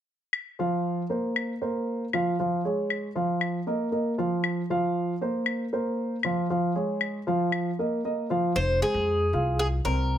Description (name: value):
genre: latin, Cuban son and guajira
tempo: 117 BPM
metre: 4/4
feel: straight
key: F minor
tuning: A4 = 440 Hz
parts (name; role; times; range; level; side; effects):
- claves; percussion; 0.3-7.8 s; none; -29 LUFS; left 6 dB; none
- dark grand piano; arpeggios; 0.6-10.2 s; F3 to F5; -26 LUFS; right 1 dB; none
- Cuban tres; melody; 8.6-10.2 s; Ab4 to C5; -26 LUFS; equal; none
- upright bass; bass; 8.6-10.2 s; F1 to F2; -27 LUFS; left 1 dB; none
room: light reverb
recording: close, detailed microphones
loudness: -25 LUFS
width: side -10 dB against mid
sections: 0.3-8.6 A section; 8.6-10.2 B section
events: none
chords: 0.3 F5; 2.4 Db; 3.4 Ebsus2; 4.4 F5; 6.5 Db; 7.5 Ebsus2; 8.6 Fm